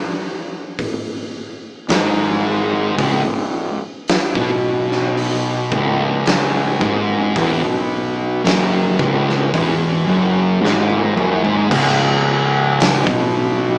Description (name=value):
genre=stoner and doom metal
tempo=55 BPM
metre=4/4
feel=straight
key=C# minor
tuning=A4 = 439 Hz
part: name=oversized low-tuned drum kit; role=drums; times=0.8-13.3 s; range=crash cymbal, hi-hat, kick drum, snare drum, toms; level=-22 LUFS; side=equal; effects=none
part: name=thick fuzz guitar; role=riff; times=1.9-13.8 s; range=C#2 to B2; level=-20 LUFS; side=equal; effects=distortion
part: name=fuzz fingered electric bass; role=bass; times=1.9-13.8 s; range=C#1 to B1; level=-25 LUFS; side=equal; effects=overdrive, tube saturation
room=light reverb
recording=band playing live in one room, small speaker sound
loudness=-17 LUFS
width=mono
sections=0.0-11.7 A section; 11.7-13.8 B section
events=drum fill 10.6-11.7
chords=0.0 C#m; 11.7 N.C.